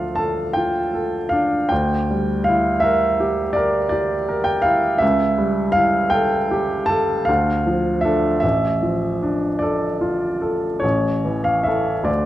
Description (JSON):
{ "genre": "classical, romantic nocturne for solo piano", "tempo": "47-55 BPM (dotted quarters)", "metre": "9/8", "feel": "rubato", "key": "D minor", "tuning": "A4 = 442 Hz", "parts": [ { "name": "clear baby grand piano", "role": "solo", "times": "0.0-12.3 s", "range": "A1 to A5", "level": "-17 LUFS", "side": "equal", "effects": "none" } ], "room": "moderate recital hall reverb, RT60 1.6 s", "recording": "dark, warm production", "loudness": "-17 LUFS", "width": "side -14 dB against mid", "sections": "0.0-12.3 A section", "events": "none", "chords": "0.0 Dm; 1.7 Em7b5/D; 5.0 A7/C#; 7.3 Dm; 8.4 Dm/A; 10.8 A", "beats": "0.56 | 1.70 2.83 3.92 | 5.02 6.12 7.28 | 8.43 9.63 10.83 | 12.08" }